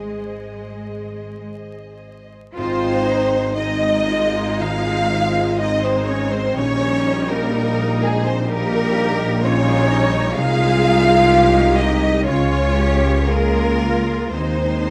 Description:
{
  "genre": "classical, slow romantic movement for symphony orchestra",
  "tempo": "61 BPM",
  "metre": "4/4",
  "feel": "uneven beats, rubato",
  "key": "Ab major",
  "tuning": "A4 = 440 Hz",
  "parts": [
    { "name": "warm symphonic violin section", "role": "melody", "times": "0.0-14.9 s", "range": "Ab4 to F5", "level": "-29 LUFS", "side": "equal", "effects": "none" },
    { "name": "rich symphonic violin section", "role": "second line", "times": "0.0-14.9 s", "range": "Ab4 to F5", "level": "-26 LUFS", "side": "equal", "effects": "none" },
    { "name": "bright symphonic viola section", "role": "accompaniment", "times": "0.0-14.9 s", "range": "G3 to Ab4", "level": "-30 LUFS", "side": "equal", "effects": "none" },
    { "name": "mellow French horn section", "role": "sustained chords", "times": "0.0-14.9 s", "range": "Ab3 to Ab4", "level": "-24 LUFS", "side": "equal", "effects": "none" },
    { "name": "concert harp", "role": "arpeggios", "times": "0.0-14.9 s", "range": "Ab2 to Eb6", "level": "-31 LUFS", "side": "equal", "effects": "none" },
    { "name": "rich symphonic cello section", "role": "bass", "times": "0.0-14.9 s", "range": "Ab3 to Ab4", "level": "-29 LUFS", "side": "equal", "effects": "none" },
    { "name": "rich symphonic double bass section", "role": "bass", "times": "0.0-14.9 s", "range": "Ab1 to Eb2", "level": "-26 LUFS", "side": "equal", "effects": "none" },
    { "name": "mellow tuba", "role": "bass", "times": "2.6-14.9 s", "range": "Ab1 to Eb2", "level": "-26 LUFS", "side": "equal", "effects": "none" }
  ],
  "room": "moderate recital hall reverb, RT60 1.5 s",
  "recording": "vinyl crackle",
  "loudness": "-18 LUFS",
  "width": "mono",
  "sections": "0.0-2.6 A section; 2.6-14.9 A section",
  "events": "none",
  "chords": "0.0 Ab; 6.6 Eb7/Bb; 10.4 Ab/C; 12.3 Bbm7/Db; 14.3 Ab/Eb"
}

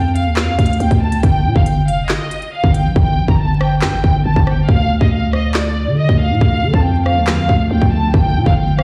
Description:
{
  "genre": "hip hop, drill",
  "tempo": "139 BPM",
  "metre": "4/4",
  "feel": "half-time",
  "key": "D phrygian",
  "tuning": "A4 = 441 Hz",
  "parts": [
    { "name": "warm studio violin section", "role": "melody", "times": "0.0-8.8 s", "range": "D5 to Bb5", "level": "-23 LUFS", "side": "equal", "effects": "low-pass filter" },
    { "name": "growling 808-style bass", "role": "bass", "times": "0.0-8.8 s", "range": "F1 to D3", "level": "-18 LUFS", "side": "equal", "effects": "none" },
    { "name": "drill drum kit", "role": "drums", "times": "0.2-8.8 s", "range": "handclaps, hi-hat, kick drum, rim click, snare drum", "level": "-17 LUFS", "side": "equal", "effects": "vintage 12-bit sampler grit" },
    { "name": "granular cloud pad", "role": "sustained chords", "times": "5.7-8.8 s", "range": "D3 to G4", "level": "-26 LUFS", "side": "equal", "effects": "built-in reverb" }
  ],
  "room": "little or no reverb",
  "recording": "played on a big sound system in a bare room, large studio reverb, vinyl crackle",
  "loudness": "-15 LUFS",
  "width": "mono",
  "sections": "0.0-8.8 A section",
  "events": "hi-hats muted 3.0-4.7, 4.7-8.8",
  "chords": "0.0 Dm; 1.2 N.C.; 4.7 Dm; 8.1 Gm"
}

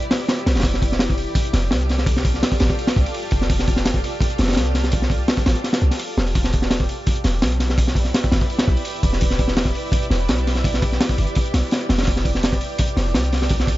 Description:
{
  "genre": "drum and bass, jungle",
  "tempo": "168 BPM",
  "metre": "4/4",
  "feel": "straight",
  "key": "E phrygian",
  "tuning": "A4 = 440 Hz",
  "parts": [
    { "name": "granular cloud pad", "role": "sustained chords", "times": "0.0-13.8 s", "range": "E4 to D5", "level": "-28 LUFS", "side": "right 1 dB", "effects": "built-in reverb" },
    { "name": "crunchy breakbeat drum kit", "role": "drums", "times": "0.0-13.8 s", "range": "hi-hat, kick drum, snare drum", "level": "-19 LUFS", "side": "equal", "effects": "none" },
    { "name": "warm 808-style bass", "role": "bass", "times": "0.5-13.8 s", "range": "E1 to C2", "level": "-21 LUFS", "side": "equal", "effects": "none" }
  ],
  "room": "little or no reverb",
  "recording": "nothing above 7.6 kHz",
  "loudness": "-17 LUFS",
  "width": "side -16 dB against mid",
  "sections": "0.0-13.8 A section",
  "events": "none",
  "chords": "0.0 Em7; 0.6 F69; 6.4 Em7; 12.1 F69"
}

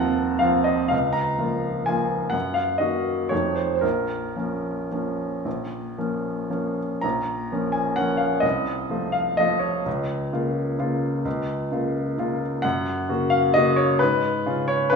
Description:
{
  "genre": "classical, piano waltz",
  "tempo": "108-140 BPM",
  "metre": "3/4",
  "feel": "rubato",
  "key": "Bb minor",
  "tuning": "A4 = 440 Hz",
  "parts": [
    { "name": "clear baby grand piano", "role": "solo", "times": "0.0-15.0 s", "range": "Bb1 to Bb5", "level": "-21 LUFS", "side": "equal", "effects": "none" }
  ],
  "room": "wet recital hall reverb, RT60 1.8 s",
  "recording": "recorded in a church or concert hall",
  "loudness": "-21 LUFS",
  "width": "side -5 dB against mid",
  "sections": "0.0-7.0 A section; 7.0-15.0 B section",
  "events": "none",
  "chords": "0.0 F5/Eb; 0.9 Bbm/Db; 2.3 Ebm/Gb; 3.3 F7; 3.8 Bbm; 8.4 F7/C; 9.9 Bbm/Db; 12.6 Gb; 14.0 Db7/Ab"
}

